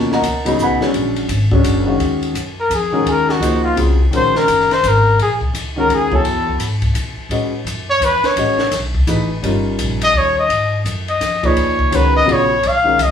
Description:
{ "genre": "modal jazz", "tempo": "169 BPM", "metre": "3/4", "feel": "swing 63% on 8ths", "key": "unclear", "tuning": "A4 = 440 Hz", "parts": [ { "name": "warm concert grand piano", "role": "accompaniment", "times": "0.0-13.0 s", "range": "A#2 to B5", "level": "-18 LUFS", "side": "left 1 dB", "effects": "none" }, { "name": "upright bass", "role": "bass", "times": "0.0-13.1 s", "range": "F#1 to Cb3", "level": "-20 LUFS", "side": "equal", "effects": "none" }, { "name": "compact cocktail drum kit", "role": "drums", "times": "0.0-13.1 s", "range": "hi-hat, kick drum, ride cymbal, snare drum", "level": "-23 LUFS", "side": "left 2 dB", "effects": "none" }, { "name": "mellow trumpet", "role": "melody", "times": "2.6-13.1 s", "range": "F4 to E#5", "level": "-15 LUFS", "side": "left 2 dB", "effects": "none" } ], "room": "wet small room reverb, RT60 0.6 s", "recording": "band playing live in one room, studio reverb", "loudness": "-14 LUFS", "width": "side -8 dB against mid", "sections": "0.0-2.0 A section; 2.0-10.5 A section; 10.5-13.1 A section", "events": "trumpet solo 2.0-13.1", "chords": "0.0 G#m11; 0.9 A#7alt; 2.0 Ebm11; 6.2 Gbm11; 9.4 Eb7; 10.5 G#m11", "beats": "0.23 0.59 | 0.94 1.29 1.65 | 2.00 2.35 2.71 | 3.06 3.41 3.77 | 4.12 4.47 4.83 | 5.18 5.54 5.89 | 6.25 6.60 6.95 | 7.31 7.66 8.02 | 8.37 8.72 9.08 | 9.43 9.79 10.14 | 10.50 10.85 11.21 | 11.56 11.92 12.28 | 12.63 12.99" }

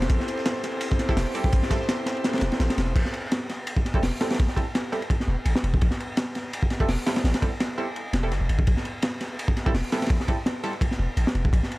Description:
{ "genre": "drum and bass, jungle", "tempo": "168 BPM", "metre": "4/4", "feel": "swing 54% on 16ths", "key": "A minor", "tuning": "A4 = 444 Hz", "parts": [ { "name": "airy breathy pad", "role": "sustained chords", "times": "0.0-2.9 s", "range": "C4 to C5", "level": "-31 LUFS", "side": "equal", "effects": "chorus, vintage 12-bit sampler grit" }, { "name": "long sustained 808-style bass", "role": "bass", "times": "0.0-11.6 s", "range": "E1 to A1", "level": "-24 LUFS", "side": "equal", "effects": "none" }, { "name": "crunchy breakbeat drum kit", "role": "drums", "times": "0.0-11.8 s", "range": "crash cymbal, hi-hat, kick drum, ride cymbal, snare drum", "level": "-24 LUFS", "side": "equal", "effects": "none" }, { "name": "dusty soul sampler-style drum kit", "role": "drums", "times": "0.1-2.9 s", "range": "hi-hat, snare drum", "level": "-39 LUFS", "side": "right 1 dB", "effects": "overdrive, high-pass filter on snare, high-pass filter on hats" }, { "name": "filtered dub chord stab", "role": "stabs", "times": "1.1-10.7 s", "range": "G3 to A4", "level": "-33 LUFS", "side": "right 2 dB", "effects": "lush chorus, dub echo" } ], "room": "small room ambience", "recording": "none", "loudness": "-22 LUFS", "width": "side -20 dB against mid", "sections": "0.0-3.0 A section; 3.0-11.8 A section", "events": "drop 0.0-3.0, 3.0-11.8", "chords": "0.0 Am7", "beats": "| 0.10 0.46 0.81 1.17 | 1.53 1.89 2.24 2.60 | 2.96 3.31 3.67 4.03 | 4.38 4.74 5.10 5.46 | 5.81 6.17 6.53 6.88 | 7.24 7.60 7.96 8.31 | 8.67 9.03 9.38 9.74 | 10.10 10.46 10.81 11.17 | 11.53" }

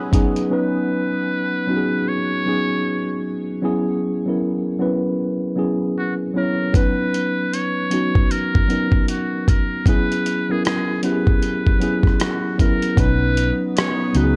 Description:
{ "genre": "lo-fi hip hop", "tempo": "77 BPM", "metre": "4/4", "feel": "swing 63% on 16ths", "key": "B major", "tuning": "A4 = 441 Hz", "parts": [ { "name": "trumpet with metal mute", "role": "melody", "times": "0.0-14.4 s", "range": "F#4 to C#5", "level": "-28 LUFS", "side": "equal", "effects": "low-pass filter" }, { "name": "mellow tine electric piano", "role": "accompaniment", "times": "0.0-14.4 s", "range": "F#3 to C#5", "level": "-23 LUFS", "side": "equal", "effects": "low-pass filter" }, { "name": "deep dark ambient pad", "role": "sustained chords", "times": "0.0-0.5, 13.7-14.4 s", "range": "B3 to D#6", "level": "-34 LUFS", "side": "equal", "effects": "chorus, built-in reverb, low-pass filter" }, { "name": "dusty soul sampler-style drum kit", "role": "drums", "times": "0.1-0.5, 6.7-14.4 s", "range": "hi-hat, kick drum, rim click", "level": "-21 LUFS", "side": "equal", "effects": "none" }, { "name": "vintage muted fingered electric bass", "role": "bass", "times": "13.0-14.4 s", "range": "B1 to C#2", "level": "-22 LUFS", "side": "equal", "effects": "none" } ], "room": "little or no reverb", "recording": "cassette tape", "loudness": "-20 LUFS", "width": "mono", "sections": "0.5-13.0 A section; 13.0-14.4 B section", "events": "break 0.0-0.5", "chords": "0.0 B6; 3.6 E69; 6.7 Bmaj7; 9.9 E69; 13.0 Bmaj7", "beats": "| 0.51 1.29 2.07 2.85 | 3.63 4.41 5.18 5.96 | 6.74 7.52 8.30 9.08 | 9.86 10.64 11.42 12.20 | 12.98 13.76" }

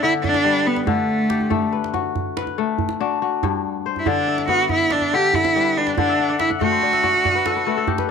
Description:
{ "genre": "west african traditional, West African string and xylophone music", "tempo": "94 BPM (dotted quarters)", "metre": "12/8", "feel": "straight", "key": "G major", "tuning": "A4 = 439 Hz", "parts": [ { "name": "clear cello", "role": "melody", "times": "0.0-7.8 s", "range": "A3 to G4", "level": "-18 LUFS", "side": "right 2 dB", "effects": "none" }, { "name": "kora", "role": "arpeggios", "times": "0.0-8.1 s", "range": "G2 to G5", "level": "-22 LUFS", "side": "left 9 dB", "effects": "none" }, { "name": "djembe", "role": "percussion", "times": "0.2-8.1 s", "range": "none", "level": "-27 LUFS", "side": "right 7 dB", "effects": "none" } ], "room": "light reverb, small room ambience", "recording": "1960s-style stereo with parts hard left and right", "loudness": "-17 LUFS", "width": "side -6 dB against mid", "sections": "0.0-8.1 A section", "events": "kora fill 6.1-8.1", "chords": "0.0 G; 0.9 D; 3.4 G; 6.0 D", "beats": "0.24 | 0.88 1.52 2.16 2.79 | 3.43 4.07 4.70 5.34 | 5.97 6.61 7.25 7.88" }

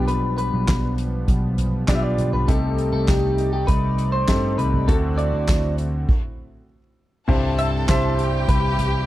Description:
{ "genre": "piano-driven pop", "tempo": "100 BPM", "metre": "4/4", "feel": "straight", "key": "unclear", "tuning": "A4 = 443 Hz", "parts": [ { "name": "electric guitar at the edge of break-up", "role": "melody", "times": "0.0-9.0 s", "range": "G4 to E5", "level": "-25 LUFS", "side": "equal", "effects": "slapback echo" }, { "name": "clear baby grand piano", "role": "accompaniment", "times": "0.0-9.1 s", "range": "G2 to E5", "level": "-27 LUFS", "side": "left 4 dB", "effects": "none" }, { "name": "chorused pulse-width pad", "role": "sustained chords", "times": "0.0-9.1 s", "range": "C3 to D5", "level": "-31 LUFS", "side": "right 1 dB", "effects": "none" }, { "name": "vintage muted picked electric bass", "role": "bass", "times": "0.0-9.0 s", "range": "B1 to G2", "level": "-22 LUFS", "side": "equal", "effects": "none" }, { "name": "soft-mallet drum kit", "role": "drums", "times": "0.1-8.9 s", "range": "crash cymbal, handclaps, hi-hat, kick drum, snare drum, toms", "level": "-22 LUFS", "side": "equal", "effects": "none" }, { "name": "rich studio violin section", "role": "second line", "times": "7.3-9.1 s", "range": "G4 to A5", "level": "-29 LUFS", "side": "right 1 dB", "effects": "none" } ], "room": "little or no reverb", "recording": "dry, close 1970s-style studio recording", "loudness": "-18 LUFS", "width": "side -15 dB against mid", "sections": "0.0-7.3 A section; 7.3-9.1 B section", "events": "stop 6.1-7.3", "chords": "0.0 G7/B; 2.5 Cm6; 4.9 D7; 7.3 C", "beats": "| 0.08 0.68 1.28 1.88 | 2.48 3.08 3.69 4.29 | 4.88 5.49 6.09 6.69 | 7.29 7.89 8.49" }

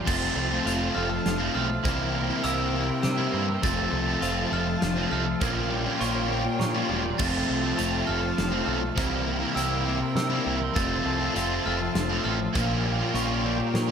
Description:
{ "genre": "post-rock", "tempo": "101 BPM", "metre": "3/4", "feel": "straight", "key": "F major", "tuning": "A4 = 438 Hz", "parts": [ { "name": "bright symphonic string section", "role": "sustained chords", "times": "0.0-13.9 s", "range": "E4 to A5", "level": "-35 LUFS", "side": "left 1 dB", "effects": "none" }, { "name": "twelve-string electric guitar", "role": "arpeggios", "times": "0.0-13.9 s", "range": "F2 to G4", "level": "-32 LUFS", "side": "left 2 dB", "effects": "lush chorus, tape echo" }, { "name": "overdriven semi-hollow guitar", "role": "riff", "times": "0.0-13.9 s", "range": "F2 to F4", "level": "-30 LUFS", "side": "right 10 dB", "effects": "ensemble chorus" }, { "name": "glockenspiel with hard plastic mallets", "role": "arpeggios", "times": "0.1-13.9 s", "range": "Db6 to A6", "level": "-34 LUFS", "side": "right 4 dB", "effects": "tape echo" }, { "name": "sludgy distorted guitar", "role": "riff", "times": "0.1-13.9 s", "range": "Bb2 to F4", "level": "-30 LUFS", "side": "left 8 dB", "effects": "overdrive" }, { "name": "growling picked electric bass", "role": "bass", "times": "0.1-13.9 s", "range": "E1 to C3", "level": "-31 LUFS", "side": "equal", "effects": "overdrive" }, { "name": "big rock drum kit", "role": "drums", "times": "0.1-13.9 s", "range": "crash cymbal, hi-hat, kick drum, snare drum", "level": "-32 LUFS", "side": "equal", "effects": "none" } ], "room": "wet plate reverb, RT60 1.5 s, small room ambience", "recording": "dreamy mix soaked in reverb", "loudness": "-23 LUFS", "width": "side -7 dB against mid", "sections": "0.0-13.9 A section", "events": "none", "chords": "0.1 F; 1.8 C7; 3.6 F; 5.4 Bbm6; 7.2 F; 9.0 C7; 10.8 F; 12.5 Bbm6", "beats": "| 0.07 0.66 1.25 | 1.85 2.44 3.03 | 3.63 4.22 4.81 | 5.41 6.00 6.59 | 7.19 7.78 8.38 | 8.97 9.57 10.16 | 10.76 11.35 11.95 | 12.54 13.14 13.74" }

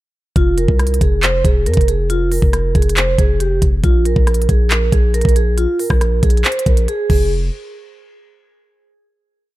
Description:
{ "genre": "hip hop, trap", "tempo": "138 BPM", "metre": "4/4", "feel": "half-time", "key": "F harmonic minor", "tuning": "A4 = 440 Hz", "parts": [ { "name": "vibraphone with medium mallets", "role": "melody", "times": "0.4-7.3 s", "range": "F4 to C5", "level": "-19 LUFS", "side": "right 2 dB", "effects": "auto-pan" }, { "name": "long sustained 808-style bass", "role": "bass", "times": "0.4-7.5 s", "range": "E1 to F2", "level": "-17 LUFS", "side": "equal", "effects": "none" }, { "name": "trap drum kit", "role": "drums", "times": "0.4-7.2 s", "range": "crash cymbal, handclaps, hi-hat, kick drum, rim click", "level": "-15 LUFS", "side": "equal", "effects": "none" } ], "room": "little or no reverb", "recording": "dark, warm production", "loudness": "-12 LUFS", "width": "side -17 dB against mid", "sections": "0.4-7.3 hook; 7.3-9.1 final hit", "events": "none", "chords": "0.4 F5; 3.8 Fmadd11/Bb (rootless); 7.1 Fm; 7.3 N.C.", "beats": "| 0.36 0.79 1.23 1.66 | 2.10 2.53 2.97 3.40 | 3.84 4.27 4.71 5.14 | 5.58 6.01 6.45 6.88 | 7.32" }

